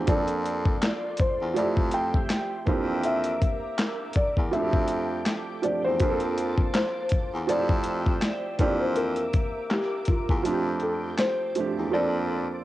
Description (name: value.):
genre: lo-fi hip hop.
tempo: 81 BPM.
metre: 4/4.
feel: swing 56% on 16ths.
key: F major.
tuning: A4 = 440 Hz.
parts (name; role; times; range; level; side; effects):
warm upright piano; accompaniment; 0.0-12.6 s; Eb3 to A4; -30 LUFS; right 5 dB; low-pass filter, cassette tape.
clear baritone saxophone; bass; 0.0-12.6 s; E2 to F2; -30 LUFS; left 1 dB; none.
felt-muted upright piano; melody; 0.1-12.6 s; F4 to G5; -29 LUFS; left 1 dB; low-pass filter.
ensemble organ-string; sustained chords; 0.1-12.6 s; G4 to E6; -38 LUFS; left 1 dB; phaser, ensemble chorus, low-pass filter, cassette tape.
dusty soul sampler-style drum kit; drums; 0.1-11.7 s; handclaps, hi-hat, kick drum, snare drum; -26 LUFS; left 1 dB; overdrive.
room: light reverb, studio reverb.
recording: home recording on cassette.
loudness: -23 LUFS.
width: side -15 dB against mid.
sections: 0.0-11.9 A section.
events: kick muted 10.4-11.9.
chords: 0.1 Bbmaj9/F; 1.6 Fmaj9; 2.7 C9/F; 4.5 F69; 6.0 Bbmaj9/F; 7.5 Dm11/F; 8.6 C9/F; 10.4 F69; 11.9 Bbmaj9/F.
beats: | 0.08 0.82 1.56 2.30 | 3.04 3.78 4.52 5.26 | 6.00 6.75 7.49 8.23 | 8.97 9.71 10.45 11.19 | 11.93.